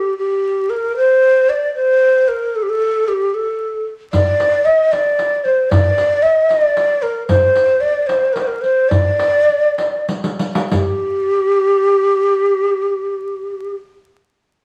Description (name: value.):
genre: Persian modal ensemble.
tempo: 61-76 BPM (dotted quarters).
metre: 6/8.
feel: straight.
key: D dastgah shur.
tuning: A4 = 440 Hz.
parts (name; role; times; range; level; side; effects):
breathy low ney; melody; 0.0-13.7 s; G4 to Eb5+47c; -16 LUFS; equal; none.
riq; percussion; 4.1-11.0 s; none; -26 LUFS; equal; none.
tombak; percussion; 4.1-11.0 s; none; -22 LUFS; equal; none.
room: moderate large studio reverb, RT60 0.8 s.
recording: vinyl crackle.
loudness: -16 LUFS.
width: mono.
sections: 0.0-10.7 A section; 10.7-14.6 B section.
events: slowing down 7.3-10.7; drum fill 10.1-10.7.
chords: none.